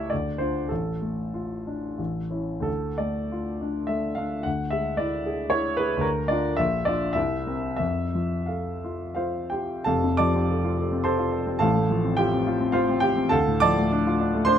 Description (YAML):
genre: classical, romantic character piece for solo piano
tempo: 82-115 BPM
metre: 3/4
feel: rubato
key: D minor, F major from 6.0 s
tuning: A4 = 440 Hz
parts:
  - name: clear grand piano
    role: solo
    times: 0.0-14.6 s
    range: F1 to D6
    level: -23 LUFS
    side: equal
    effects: none
room: little or no reverb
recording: close, detailed microphones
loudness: -23 LUFS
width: side -9 dB against mid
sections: 0.0-9.9 A section; 9.9-14.6 B section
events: none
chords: 0.1 Dm; 0.7 Dm/A; 2.0 A; 2.7 Dm; 4.5 E7/D; 6.0 Bb/D; 6.6 Bb; 7.2 C7; 7.8 F; 11.6 F/A; 13.3 Dm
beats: 0.10 | 0.70 1.33 1.99 | 2.66 3.32 3.90 | 4.45 4.99 5.53 | 6.05 6.59 7.16 | 7.80 8.49 9.17 | 9.86 10.49 11.05 | 11.61 12.19 12.74 | 13.31 13.91 14.47